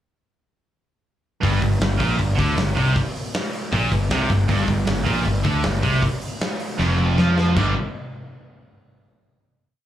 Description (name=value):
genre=hard rock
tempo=156 BPM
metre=4/4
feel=straight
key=G minor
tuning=A4 = 439 Hz
part: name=distorted electric guitar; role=riff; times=1.4-7.7 s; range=F2 to G3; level=-25 LUFS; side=right 6 dB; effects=overdrive, slapback echo
part: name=heavy high-gain guitar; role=riff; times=1.4-7.7 s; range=F2 to G3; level=-26 LUFS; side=equal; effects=distortion, slapback echo
part: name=sludgy distorted guitar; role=riff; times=1.4-7.7 s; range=F2 to G3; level=-25 LUFS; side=left 5 dB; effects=overdrive
part: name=fuzz fingered electric bass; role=bass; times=1.4-7.7 s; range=F1 to F2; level=-22 LUFS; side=equal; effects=overdrive
part: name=big rock drum kit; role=drums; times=1.4-7.7 s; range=crash cymbal, hi-hat, kick drum, snare drum, toms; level=-24 LUFS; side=equal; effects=none
room=light reverb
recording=live gig heard through the venue's PA, club ambience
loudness=-18 LUFS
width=side -12 dB against mid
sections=1.4-7.6 riff; 7.6-9.1 final chord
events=drum fill 6.8-7.6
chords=1.4 Gm; 7.6 G5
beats=| 1.43 1.81 2.19 2.58 | 2.96 3.35 3.73 4.11 | 4.50 4.88 5.26 5.65 | 6.03 6.42 6.80 7.18 | 7.57